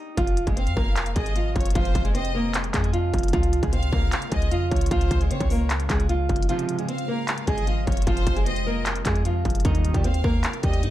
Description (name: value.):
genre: hip hop, trap.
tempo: 152 BPM.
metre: 4/4.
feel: half-time.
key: F minor.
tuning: A4 = 440 Hz.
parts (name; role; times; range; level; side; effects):
fingerpicked steel-string acoustic guitar; melody; 0.0-10.9 s; F3 to Eb5; -28 LUFS; right 1 dB; low-pass filter, ping-pong delay.
deep dark ambient pad; sustained chords; 1.0-10.9 s; C3 to G4; -34 LUFS; equal; chorus, built-in reverb.
clean 808-style bass; bass; 0.2-10.9 s; F1 to Db3; -25 LUFS; equal; none.
industrial drum kit; drums; 0.2-10.9 s; handclaps, hi-hat, kick drum; -25 LUFS; equal; distortion.
clear studio violin section; second line; 0.6-10.9 s; C5 to F5; -34 LUFS; left 1 dB; ping-pong delay.
analog synth brass; stabs; 6.5-6.9, 9.6-10.0 s; G2 to F3; -31 LUFS; right 4 dB; chorus.
room: digital ambience.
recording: dark, warm production.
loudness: -21 LUFS.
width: side -14 dB against mid.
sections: 0.2-10.9 A section.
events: break 0.0, 6.5-7.3.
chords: 0.2 Fm; 3.3 Db; 6.5 Fm; 9.6 Eb.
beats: | 0.17 0.57 0.96 1.36 | 1.75 2.15 2.54 2.94 | 3.33 3.73 4.12 4.52 | 4.91 5.31 5.70 6.10 | 6.49 6.89 7.28 7.67 | 8.07 8.46 8.86 9.25 | 9.65 10.04 10.44 10.83.